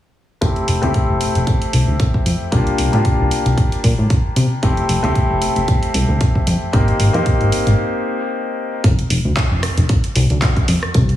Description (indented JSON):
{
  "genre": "nu-disco, nu disco",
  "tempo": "114 BPM",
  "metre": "4/4",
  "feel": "swing 55% on 16ths",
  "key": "F major",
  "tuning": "A4 = 440 Hz",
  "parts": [
    { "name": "warm grand piano", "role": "accompaniment", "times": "0.4-8.8 s", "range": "A3 to G4", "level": "-20 LUFS", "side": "left 1 dB", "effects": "sidechain pumping, low-pass filter, tape echo" },
    { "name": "fat analog bass", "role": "bass", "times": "0.4-11.1 s", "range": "F1 to C3", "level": "-16 LUFS", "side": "equal", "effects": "none" },
    { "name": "electronic kick drum", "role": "drums", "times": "0.4-11.1 s", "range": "none", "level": "-17 LUFS", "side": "equal", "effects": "studio reverb" },
    { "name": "pop drum kit", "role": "drums", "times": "0.4-11.2 s", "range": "handclaps, hi-hat, rim click", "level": "-25 LUFS", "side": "right 1 dB", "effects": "studio reverb" }
  ],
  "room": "light reverb, digital ambience",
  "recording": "heavily compressed radio sound, multiband compression, studio reverb",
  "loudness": "-14 LUFS",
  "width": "side -12 dB against mid",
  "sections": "0.4-8.8 A section; 8.8-11.2 B section",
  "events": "break 7.8-8.8",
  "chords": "0.4 Fmaj7; 2.5 C9sus4; 4.6 Fmaj7; 6.7 Abmaj7; 8.8 F5",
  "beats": "| 0.42 0.94 1.47 2.00 | 2.52 3.05 3.58 4.10 | 4.63 5.16 5.68 6.21 | 6.73 7.26 7.79 8.31 | 8.84 9.37 9.89 10.42 | 10.95"
}